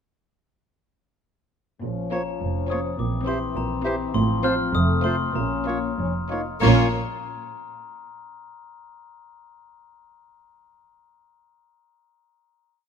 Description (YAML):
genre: cinematic, playful, whimsical film cue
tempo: 95-105 BPM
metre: 2/4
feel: straight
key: Bb minor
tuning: A4 = 441 Hz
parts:
  - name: mellow French horn section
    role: sustained chords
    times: 1.8-6.9 s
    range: E3 to Eb4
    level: -28 LUFS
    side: left 5 dB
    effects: none
  - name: clear chamber double bass section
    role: bass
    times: 1.8-7.0 s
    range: F1 to Bb1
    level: -26 LUFS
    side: right 2 dB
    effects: none
  - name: warm chamber cello section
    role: bass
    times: 1.8-7.0 s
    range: F2 to Bb2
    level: -28 LUFS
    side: right 2 dB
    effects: none
  - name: glockenspiel with soft plastic mallets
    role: melody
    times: 2.1-7.0 s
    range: Bb5 to F6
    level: -31 LUFS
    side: left 4 dB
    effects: none
  - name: warm chamber violin section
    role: melody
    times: 2.1-7.0 s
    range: C5 to Db5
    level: -33 LUFS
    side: left 4 dB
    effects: none
  - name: clear chamber violin section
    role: second line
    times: 2.1-7.0 s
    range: E4 to F4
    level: -34 LUFS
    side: left 2 dB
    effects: none
  - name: clear clarinet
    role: second line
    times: 2.1-6.9 s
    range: F4 to G4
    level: -34 LUFS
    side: equal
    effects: none
  - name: warm oboe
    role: second line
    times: 2.1-6.9 s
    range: C5 to Db5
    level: -35 LUFS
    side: right 2 dB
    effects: none
  - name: mellow bassoon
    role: accompaniment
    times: 2.1-6.9 s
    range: E3 to Bb3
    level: -33 LUFS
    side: right 3 dB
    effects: none
  - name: rich chamber viola section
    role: accompaniment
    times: 2.1-7.0 s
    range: A3 to C4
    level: -30 LUFS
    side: right 4 dB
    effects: none
room: light reverb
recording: close, detailed microphones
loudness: -21 LUFS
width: side -7 dB against mid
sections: 1.8-6.6 A section; 6.6-7.9 final chord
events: none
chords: 1.8 Bbm; 3.0 C7/Bb; 4.1 F/A; 4.7 F7; 5.4 Bbm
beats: | 1.82 2.41 | 2.99 3.56 | 4.14 4.74 | 5.36 5.99 | 6.62